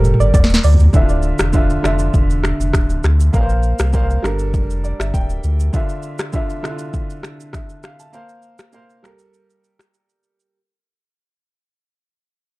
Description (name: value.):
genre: afrobeats.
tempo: 100 BPM.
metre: 4/4.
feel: straight.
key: D minor.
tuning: A4 = 440 Hz.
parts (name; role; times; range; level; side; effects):
warm baby grand piano; accompaniment; 0.0-10.6 s; D3 to A5; -23 LUFS; right 1 dB; none.
sub bass with octave; bass; 0.0-5.7 s; D1 to D2; -16 LUFS; equal; none.
afro-pop drum kit; drums; 0.0-10.5 s; finger snaps, hi-hat, kick drum, rim click, shaker, snare drum, toms; -17 LUFS; equal; none.
soft round pluck; melody; 0.2-0.8 s; D5; -24 LUFS; right 5 dB; chorus, digital delay.
room: little or no reverb.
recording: dark, warm production.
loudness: -14 LUFS.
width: side -21 dB against mid.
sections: 0.9-10.5 A section.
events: drum fill 0.0-0.9; fade-out 0.9-10.5; grand piano fill 4.5-5.7.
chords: 0.0 Gmadd9; 0.9 Dmadd9; 3.3 Bbsus2; 4.2 Gmadd9; 5.7 Dmadd9; 8.1 Bbsus2; 9.0 Gmadd9.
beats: 0.34 | 0.94 1.54 2.14 2.74 | 3.34 3.94 4.54 5.14 | 5.74 6.34 6.94 7.54 | 8.14 8.74 9.34 9.94.